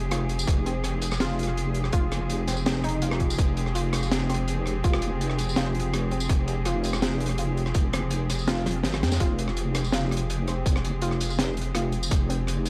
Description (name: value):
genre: half-time drum and bass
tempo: 165 BPM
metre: 4/4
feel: half-time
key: F minor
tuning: A4 = 440 Hz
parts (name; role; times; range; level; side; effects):
- warm studio cello section; sustained chords; 0.0-12.7 s; F3 to Ab4; -36 LUFS; equal; sidechain pumping
- deep soft wobble bass; bass; 0.0-12.7 s; F1 to F2; -30 LUFS; equal; chorus
- warbly dusty pluck; arpeggios; 0.1-12.5 s; C4 to F4; -36 LUFS; equal; chorus, delay
- crunchy breakbeat drum kit; drums; 0.1-12.7 s; hi-hat, rim click, snare drum, tambourine, toms; -33 LUFS; equal; none
- electronic kick drum; drums; 0.5-12.2 s; none; -26 LUFS; equal; none
room: light reverb, studio reverb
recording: none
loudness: -26 LUFS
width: mono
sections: 0.0-12.7 A section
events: drum fill 8.7-9.2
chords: 0.0 Fmadd9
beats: 0.11 | 0.48 0.84 1.20 1.57 | 1.93 2.29 2.66 3.02 | 3.39 3.75 4.11 4.48 | 4.84 5.20 5.57 5.93 | 6.29 6.66 7.02 7.39 | 7.75 8.11 8.48 8.84 | 9.20 9.57 9.93 10.29 | 10.66 11.02 11.39 11.75 | 12.11 12.48